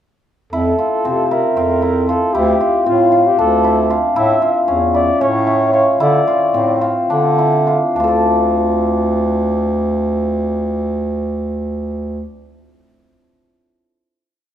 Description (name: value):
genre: contemporary instrumental, chamber music in an uneven meter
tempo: 204-232 BPM (eighths)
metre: 7/8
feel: straight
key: D minor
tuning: A4 = 437 Hz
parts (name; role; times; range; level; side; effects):
- breathy flugelhorn; melody; 0.5-6.8 s; F4 to E5; -18 LUFS; right 1 dB; none
- cimbalom; arpeggios; 0.5-12.4 s; C4 to D5; -16 LUFS; left 2 dB; none
- warm bass clarinet; bass; 0.5-12.3 s; D2 to D3; -18 LUFS; right 1 dB; none
room: light reverb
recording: minimal, uncompressed stereo recording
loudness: -13 LUFS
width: side -10 dB against mid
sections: 0.5-8.0 A section; 8.0-12.1 final chord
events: slowing down 4.2-8.0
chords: 0.5 Fmaj7; 2.3 Dm7; 4.2 A; 6.0 Dm7; 8.0 Dm